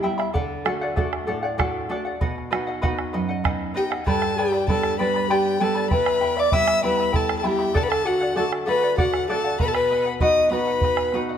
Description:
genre	andean folk, Andean ensemble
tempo	65 BPM (dotted quarters)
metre	6/8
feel	straight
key	unclear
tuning	A4 = 438 Hz
part	mellow hollow polished pan flute	melody	0.0, 3.8-11.2 s	F#4 to E5	-22 LUFS	equal	none
part	charango	accompaniment	0.0-11.4 s	E4 to B5	-28 LUFS	left 2 dB	none
part	nylon-string guitar	accompaniment	0.0-11.4 s	E2 to F#4	-28 LUFS	right 2 dB	none
part	bombo	percussion	0.0-11.2 s	none	-27 LUFS	right 2 dB	none
part	warm violin	second line	3.8-11.2 s	F#5 to E6	-27 LUFS	left 6 dB	none
room	moderate scoring stage reverb, RT60 1.9 s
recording	none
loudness	-20 LUFS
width	side -8 dB against mid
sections	0.0-4.1 A section; 4.1-11.4 B section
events	none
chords	0.4 D; 2.2 B; 4.1 G; 5.9 Em; 7.8 D; 9.6 B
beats	| 0.35 1.28 | 2.21 3.14 | 4.07 4.99 | 5.92 6.84 | 7.76 8.68 | 9.60 10.52

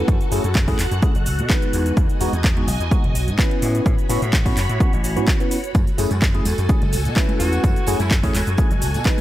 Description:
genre	filtered disco house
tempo	127 BPM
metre	4/4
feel	swing 53% on 16ths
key	F# dorian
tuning	A4 = 440 Hz
part	tine electric piano	accompaniment	0.0-9.2 s	G#3 to B4	-25 LUFS	equal	phaser, sidechain pumping
part	phased string machine	sustained chords	0.0-9.2 s	F#4 to B5	-28 LUFS	equal	ensemble chorus, phaser, sidechain pumping
part	vintage slap bass	bass	0.1-9.0 s	E1 to B2	-22 LUFS	equal	sidechain pumping
part	electronic kick drum	drums	0.1-9.2 s	none	-19 LUFS	equal	overdrive
part	house drum kit	drums	0.1-9.2 s	cabasa, handclaps, hi-hat	-27 LUFS	equal	overdrive, sidechain pumping on hats, sidechain pumping on cymbals, sidechain pumping on perc
part	tambourine and congas	percussion	5.7-9.2 s	none	-31 LUFS	right 2 dB	sidechain pumping on perc
part	clear horn section	melody	7.4-8.4 s	C#4 to F#4	-29 LUFS	equal	sidechain pumping, dub echo
room	little or no reverb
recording	none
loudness	-16 LUFS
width	side -14 dB against mid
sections	0.0-9.2 A section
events	none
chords	0.0 F#m9; 1.7 Emaj7; 3.6 A69; 5.7 F#m9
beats	| 0.08 0.55 1.02 1.50 | 1.97 2.44 2.91 3.39 | 3.86 4.33 4.80 5.28 | 5.75 6.22 6.69 7.17 | 7.64 8.11 8.58 9.06

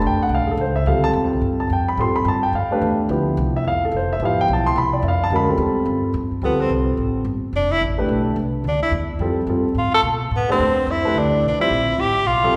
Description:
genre	modal jazz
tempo	216 BPM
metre	4/4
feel	swing 59% on 8ths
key	D dorian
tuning	A4 = 439 Hz
part	warm grand piano	accompaniment	0.0-12.6 s	F3 to C6	-23 LUFS	equal	none
part	upright bass	bass	0.0-12.6 s	F1 to B2	-26 LUFS	equal	none
part	bright tenor saxophone	melody	6.4-12.6 s	B3 to A4	-22 LUFS	equal	none
room	wet recital hall reverb, RT60 1.9 s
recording	recorded in a church or concert hall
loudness	-20 LUFS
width	mono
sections	0.0-6.4 A section; 6.4-12.6 A section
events	tenor saxophone solo 6.4-12.6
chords	0.0 Dm9; 6.4 Dm7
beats	0.04 0.31 0.59 | 0.87 1.15 1.43 1.71 | 1.98 2.26 2.54 2.82 | 3.10 3.37 3.65 3.93 | 4.21 4.48 4.76 5.04 | 5.32 5.59 5.87 6.15 | 6.43 6.71 6.98 7.26 | 7.54 7.82 8.10 8.37 | 8.65 8.93 9.21 9.48 | 9.76 10.04 10.32 10.60 | 10.88 11.15 11.43 11.71 | 11.99 12.27 12.54

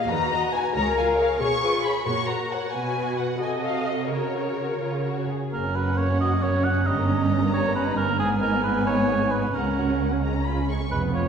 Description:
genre	quick classical-period movement for symphony orchestra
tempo	89 BPM (dotted quarters)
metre	6/8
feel	rubato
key	F# major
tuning	A4 = 440 Hz
part	warm studio violin section	melody	0.0-10.9 s	C#5 to C#6	-30 LUFS	left 4 dB	none
part	rich studio viola section	accompaniment	0.0-11.3 s	B3 to Eb5	-28 LUFS	equal	none
part	warm studio violin section	second line	0.1-11.3 s	G3 to E#5	-30 LUFS	left 2 dB	none
part	warm studio cello section	bass	0.1-11.3 s	C#2 to C#3	-28 LUFS	right 2 dB	none
part	warm cor anglais	second line	5.5-11.3 s	G#4 to F#5	-26 LUFS	right 3 dB	none
part	rich studio double bass section	bass	5.5-11.3 s	F1 to C#2	-28 LUFS	right 3 dB	none
room	wet scoring stage reverb, RT60 2.1 s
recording	heard from further back in the room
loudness	-21 LUFS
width	side -7 dB against mid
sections	0.0-5.5 A section; 5.5-11.3 B section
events	none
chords	0.1 B/D#; 0.7 C#; 1.4 C#7/B; 2.1 F#/A#; 2.7 G#m7/B; 3.4 Cdim7; 4.1 F#/C#; 5.5 F#; 6.9 D#7/G; 8.2 G#m; 9.5 F#/C#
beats	| 0.09 0.74 | 1.41 2.07 | 2.73 3.41 | 4.10 4.81 | 5.52 6.20 | 6.87 7.54 | 8.19 8.86 | 9.54 10.23 | 10.92

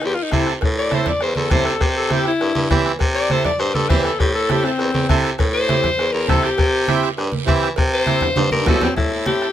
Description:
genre	latin, cumbia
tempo	201 BPM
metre	4/4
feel	straight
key	C major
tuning	A4 = 440 Hz
part	edgy alto saxophone	melody	0.0-9.5 s	C4 to D5	-21 LUFS	left 3 dB	none
part	growling baritone saxophone	bass	0.0-9.4 s	E2 to E3	-22 LUFS	equal	none
part	bombo	percussion	0.0-9.5 s	none	-21 LUFS	left 2 dB	none
part	cowbell and timbales	percussion	0.0-8.9 s	none	-30 LUFS	right 4 dB	none
part	guiro	percussion	0.0-9.5 s	none	-33 LUFS	right 7 dB	none
part	accordion	accompaniment	0.3-9.5 s	C4 to A4	-25 LUFS	right 5 dB	none
part	congas	percussion	0.3-9.4 s	none	-24 LUFS	right 3 dB	none
room	little or no reverb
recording	none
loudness	-16 LUFS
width	side -11 dB against mid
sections	0.0-9.0 A section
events	alto saxophone solo 0.0-9.0; drum fill 8.2-9.0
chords	0.0 Am; 1.8 C; 4.2 Am; 6.6 C; 9.0 Am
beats	0.02 0.32 | 0.62 0.92 1.22 1.51 | 1.81 2.11 2.41 2.71 | 3.01 3.31 3.60 3.90 | 4.20 4.50 4.80 5.09 | 5.39 5.69 5.99 6.29 | 6.59 6.88 7.18 7.48 | 7.78 8.08 8.38 8.68 | 8.97 9.27

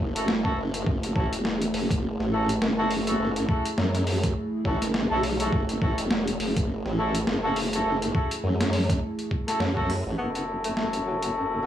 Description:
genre	glitch hop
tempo	103 BPM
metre	4/4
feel	swing 57% on 16ths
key	F# minor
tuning	A4 = 440 Hz
part	dark analog pad	sustained chords	0.0-11.7 s	A3 to A5	-31 LUFS	equal	chorus, sidechain pumping
part	formant-sweep wobble bass	bass	0.0-11.7 s	E1 to F#2	-28 LUFS	equal	chorus, tube saturation
part	mellow horn section	stabs	0.2-11.7 s	C#4 to A4	-30 LUFS	equal	sidechain pumping, low-pass filter, dub echo
part	boom bap sampler-style drum kit	drums	0.2-11.3 s	hi-hat, snare drum	-30 LUFS	equal	overdrive
part	electronic kick drum	drums	0.4-9.9 s	none	-26 LUFS	equal	overdrive
part	breathy tenor saxophone	melody	10.2-11.7 s	F#3 to B3	-34 LUFS	left 1 dB	dub echo
room	light reverb, digital ambience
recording	small room ambience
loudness	-23 LUFS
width	side -11 dB against mid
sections	0.0-10.2 A section; 10.2-11.7 B section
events	band accent 9.6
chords	0.0 F#m7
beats	0.28 | 0.87 1.45 2.03 2.61 | 3.20 3.78 4.36 4.94 | 5.53 6.11 6.69 7.27 | 7.86 8.44 9.02 9.60 | 10.19 10.77 11.35

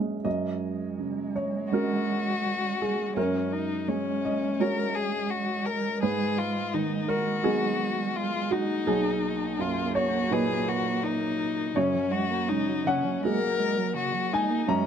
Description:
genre	neoclassical piano and strings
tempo	83 BPM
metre	4/4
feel	rubato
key	F# major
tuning	A4 = 440 Hz
part	warm upright piano	accompaniment	0.0-14.9 s	B1 to A#5	-28 LUFS	right 2 dB	none
part	warm cello	second line	0.2-14.9 s	C#3 to A#3	-32 LUFS	right 4 dB	none
part	warm violin	melody	1.7-14.9 s	C#4 to A#4	-29 LUFS	left 6 dB	none
room	light reverb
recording	close, detailed microphones, lossy compression artefacts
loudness	-25 LUFS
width	side -8 dB against mid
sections	0.3-14.9 A section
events	none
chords	0.3 F#add9; 6.0 G#m7; 8.9 Bmaj7; 11.8 F#add9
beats	| 0.25 0.99 1.72 2.44 | 3.16 3.88 4.61 5.32 | 6.04 6.74 7.45 8.16 | 8.88 9.60 10.32 11.04 | 11.76 12.49 13.24 13.96 | 14.68

